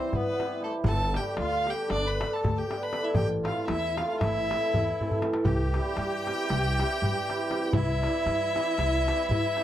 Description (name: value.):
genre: balkan folk, Balkan wedding band.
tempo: 235 BPM (eighths).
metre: 9/8.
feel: straight.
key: C major.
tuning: A4 = 440 Hz.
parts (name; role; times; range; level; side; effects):
rich violin; melody; 0.0-9.6 s; A4 to B5; -30 LUFS; equal; none.
musette accordion; second line; 0.0-9.6 s; A3 to B4; -34 LUFS; equal; none.
cimbalom; accompaniment; 0.0-9.6 s; D3 to A4; -31 LUFS; right 1 dB; none.
upright bass; bass; 0.1-9.4 s; G1 to G2; -31 LUFS; equal; none.
darbuka; percussion; 0.1-9.6 s; none; -31 LUFS; left 1 dB; none.
room: little or no reverb.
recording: dry, close 1970s-style studio recording.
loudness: -25 LUFS.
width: side -12 dB against mid.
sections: 0.0-9.6 A section.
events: drum fill 4.9-5.5.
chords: 0.0 C; 0.8 G; 3.2 Am; 5.5 C.